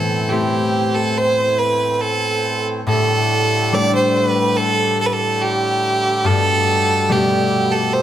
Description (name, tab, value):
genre	celtic folk, Celtic slow air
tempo	71 BPM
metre	4/4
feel	rubato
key	A minor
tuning	A4 = 437 Hz
part	clear fiddle	melody	0.0-8.0 s	G4 to D5	-17 LUFS	right 2 dB	none
part	concert harp	accompaniment	0.0-8.0 s	G2 to E4	-20 LUFS	left 4 dB	none
part	accordion	sustained chords	0.0-8.0 s	A2 to C4	-25 LUFS	right 1 dB	none
room	moderate recital hall reverb, RT60 1.7 s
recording	none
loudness	-15 LUFS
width	side -11 dB against mid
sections	0.0-8.0 A section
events	none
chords	0.0 Am; 2.9 Dsus4/A; 6.3 Gadd9